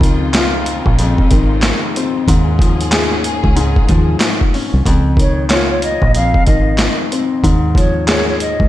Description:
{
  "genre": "hip hop, boom-bap hip-hop",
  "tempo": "93 BPM",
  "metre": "4/4",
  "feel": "swing 61% on 16ths",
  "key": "Db major",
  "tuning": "A4 = 440 Hz",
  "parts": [
    { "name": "dark grand piano", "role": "accompaniment", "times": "0.0-8.7 s", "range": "F2 to Ab4", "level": "-18 LUFS", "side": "left 4 dB", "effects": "cassette tape, high-pass filter, low-pass filter" },
    { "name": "warm studio string section", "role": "sustained chords", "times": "0.0-4.8 s", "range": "Db3 to Ab4", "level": "-24 LUFS", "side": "left 1 dB", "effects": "high-pass filter, low-pass filter" },
    { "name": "deep dub fingered electric bass", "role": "bass", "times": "0.0-8.7 s", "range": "Ab1 to Eb2", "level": "-16 LUFS", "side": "equal", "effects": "none" },
    { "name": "boom bap sampler-style drum kit", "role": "drums", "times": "0.0-8.7 s", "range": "handclaps, hi-hat, kick drum, snare drum", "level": "-15 LUFS", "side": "equal", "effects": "none" },
    { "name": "mellow silver concert flute", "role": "melody", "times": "5.2-8.7 s", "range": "Db5 to F5", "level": "-19 LUFS", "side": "right 1 dB", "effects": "high-pass filter, low-pass filter, diffuse ambient delay" }
  ],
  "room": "light reverb, small room reverb",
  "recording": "none",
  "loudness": "-11 LUFS",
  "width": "side -14 dB against mid",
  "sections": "0.0-4.9 A section; 4.9-8.7 B section",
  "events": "none",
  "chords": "0.0 Dbmaj9; 2.3 Eb9sus4; 4.9 Dbmaj9; 7.4 Eb9sus4",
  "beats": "0.34 0.99 1.63 | 2.28 2.92 3.57 4.21 | 4.86 5.50 6.15 6.79 | 7.44 8.08"
}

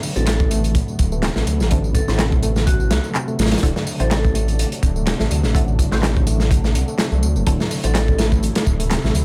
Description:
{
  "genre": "breakbeat, breaks",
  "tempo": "125 BPM",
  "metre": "4/4",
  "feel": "swing 54% on 16ths",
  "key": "unclear",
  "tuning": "A4 = 440 Hz",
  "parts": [
    { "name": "lush unison pad", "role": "sustained chords", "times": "0.0-9.2 s", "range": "C3 to E4", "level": "-35 LUFS", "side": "equal", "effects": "none" },
    { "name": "reed electric piano", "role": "riff", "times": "0.0-9.2 s", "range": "C3 to D4", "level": "-28 LUFS", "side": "equal", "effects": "fast tremolo, tube saturation, tape echo" },
    { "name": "crunchy breakbeat drum kit", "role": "drums", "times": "0.0-9.2 s", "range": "hi-hat, kick drum, snare drum", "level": "-22 LUFS", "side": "equal", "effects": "none" },
    { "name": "electronic tambourine and handclaps", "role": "drums", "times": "0.0-9.2 s", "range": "none", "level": "-33 LUFS", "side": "equal", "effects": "none" },
    { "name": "vibraphone with medium hard mallets", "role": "melody", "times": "0.2-4.5, 7.8-8.2 s", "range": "F#4 to A4", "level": "-31 LUFS", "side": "equal", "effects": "telephone sound, tape echo" },
    { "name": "filtered dub chord stab", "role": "stabs", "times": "0.2-8.0 s", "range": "C4 to C5", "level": "-32 LUFS", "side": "equal", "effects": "phaser, subtle chorus, tape echo" },
    { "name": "dark detuned saw bass", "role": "bass", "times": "0.2-9.2 s", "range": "D1 to D2", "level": "-22 LUFS", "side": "equal", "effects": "tube saturation" }
  ],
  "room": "little or no reverb",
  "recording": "none",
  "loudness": "-19 LUFS",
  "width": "mono",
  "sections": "0.0-9.2 A section",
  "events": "none",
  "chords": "0.0 D7",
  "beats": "0.27 0.75 1.23 | 1.71 2.19 2.67 3.15 | 3.63 4.11 4.59 5.07 | 5.55 6.03 6.51 6.99 | 7.47 7.95 8.43 8.91"
}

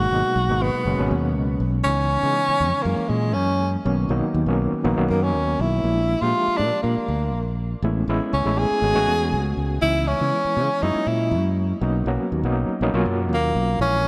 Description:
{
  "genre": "electric jazz fusion",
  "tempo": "120 BPM",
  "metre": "4/4",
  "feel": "straight",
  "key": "unclear",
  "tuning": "A4 = 442 Hz",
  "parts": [
    { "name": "breathy tenor saxophone", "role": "melody", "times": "0.0-14.1 s", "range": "G#3 to G#4", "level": "-25 LUFS", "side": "equal", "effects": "none" },
    { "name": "overdriven reed electric piano", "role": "accompaniment", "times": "0.0-14.1 s", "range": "B2 to G4", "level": "-27 LUFS", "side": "equal", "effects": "tremolo" },
    { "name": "fingered electric bass", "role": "bass", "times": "0.0-14.1 s", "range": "F#1 to C#3", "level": "-26 LUFS", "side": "equal", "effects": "none" }
  ],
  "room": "moderate lush hall reverb, RT60 3.0 s",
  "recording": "bright 1980s-style digital production",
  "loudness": "-22 LUFS",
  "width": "mono",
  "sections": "0.0-14.1 A section",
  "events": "none",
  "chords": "0.0 G#m9; 1.9 C#m9; 2.9 F#9; 3.9 Bmaj9; 5.8 A#7#11; 7.8 Amaj9; 9.8 C#m7; 10.8 F#7; 11.8 Bmaj9",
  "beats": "0.36 0.86 1.36 | 1.86 2.36 2.86 3.36 | 3.85 4.35 4.85 5.35 | 5.85 6.35 6.84 7.34 | 7.84 8.34 8.84 9.33 | 9.83 10.33 10.83 11.32 | 11.82 12.32 12.82 13.32 | 13.81"
}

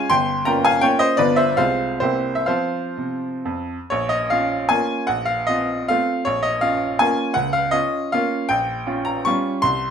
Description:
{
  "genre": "classical, romantic triple-time dance for piano with dotted rhythms",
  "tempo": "116-174 BPM",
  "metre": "3/4",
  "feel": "rubato",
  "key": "F minor, Bb minor from 3.9 s",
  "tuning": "A4 = 440 Hz",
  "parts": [
    { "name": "bright baby grand piano", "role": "solo", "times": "0.0-9.9 s", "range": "G1 to Db6", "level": "-18 LUFS", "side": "equal", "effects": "none" }
  ],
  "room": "moderate large studio reverb, RT60 0.8 s",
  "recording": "none",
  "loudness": "-18 LUFS",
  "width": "side -7 dB against mid",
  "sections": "0.0-3.9 A section; 3.9-9.9 B section",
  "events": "none",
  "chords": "0.1 Gm7b5; 1.2 G7; 1.6 Fm/C; 2.0 C7; 2.5 F5; 3.9 Bbm; 5.1 F7/Bb; 6.2 Bbm; 7.4 Bbm/Db; 8.5 Gm7b5/Bb",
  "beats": "| 0.10 0.46 0.83 | 1.19 1.59 2.02 | 2.47 2.97 3.46 | 3.90 4.31 4.71 | 5.08 5.47 5.88 | 6.25 6.63 7.01 | 7.35 7.74 8.12 | 8.49 8.87 9.25 | 9.63"
}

